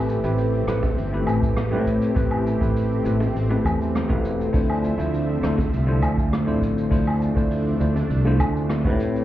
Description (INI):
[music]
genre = sunset chillout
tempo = 101 BPM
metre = 4/4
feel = straight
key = D dorian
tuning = A4 = 439 Hz
[part]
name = bell-like tine electric piano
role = accompaniment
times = 0.0-9.2 s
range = A3 to C5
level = -25 LUFS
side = equal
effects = auto-pan, digital delay
[part]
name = lush unison pad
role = sustained chords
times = 0.0-9.2 s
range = D3 to E5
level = -28 LUFS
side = equal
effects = chorus, phaser
[part]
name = fingered electric bass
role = bass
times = 0.0-9.2 s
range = E1 to A2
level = -23 LUFS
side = equal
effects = none
[part]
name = jazz brush drum kit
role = drums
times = 0.1-9.2 s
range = hi-hat, rim click, shaker, woodblock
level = -31 LUFS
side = left 1 dB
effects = none
[part]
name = electronic kick drum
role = drums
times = 0.8-9.0 s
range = none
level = -24 LUFS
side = equal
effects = none
[part]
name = bongos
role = percussion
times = 0.8-9.0 s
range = none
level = -32 LUFS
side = left 1 dB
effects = none
[sound]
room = light reverb, small room ambience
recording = heard muffled through a wall, club reverb, EQ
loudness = -19 LUFS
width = side -13 dB against mid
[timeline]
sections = 0.0-9.2 A section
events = none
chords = 0.0 Am9; 4.5 Dm9